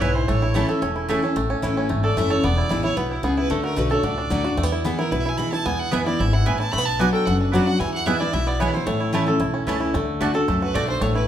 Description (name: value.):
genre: bluegrass.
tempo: 224 BPM.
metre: 4/4.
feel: straight.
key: A major.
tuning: A4 = 440 Hz.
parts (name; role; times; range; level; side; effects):
clear fiddle; melody; 0.0-11.3 s; E4 to B5; -27 LUFS; right 2 dB; none.
picked steel-string acoustic guitar; accompaniment; 0.0-11.3 s; E2 to F#4; -24 LUFS; left 2 dB; none.
bluegrass banjo; arpeggios; 0.0-11.3 s; E3 to A4; -25 LUFS; right 1 dB; none.
mandolin; stabs; 0.0-1.2, 5.9-10.8 s; A3 to A5; -28 LUFS; right 4 dB; none.
upright bass; bass; 0.0-11.3 s; E1 to E2; -25 LUFS; equal; none.
room: moderate large studio reverb, RT60 1.0 s.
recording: band playing live in one room.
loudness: -19 LUFS.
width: side -10 dB against mid.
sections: 0.0-1.4 A section; 1.4-9.9 A section; 9.9-11.3 B section.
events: none.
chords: 0.3 A; 2.4 E; 3.5 D; 4.6 E; 6.7 Bm; 7.8 E; 8.9 A; 9.9 D.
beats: 0.01 | 0.28 0.55 0.82 1.09 | 1.36 1.63 1.90 2.17 | 2.44 2.70 2.97 3.24 | 3.51 3.78 4.04 4.31 | 4.58 4.85 5.12 5.39 | 5.66 5.92 6.19 6.46 | 6.73 7.00 7.26 7.53 | 7.80 8.07 8.34 8.60 | 8.87 9.14 9.41 9.67 | 9.94 10.21 10.48 10.75 | 11.01.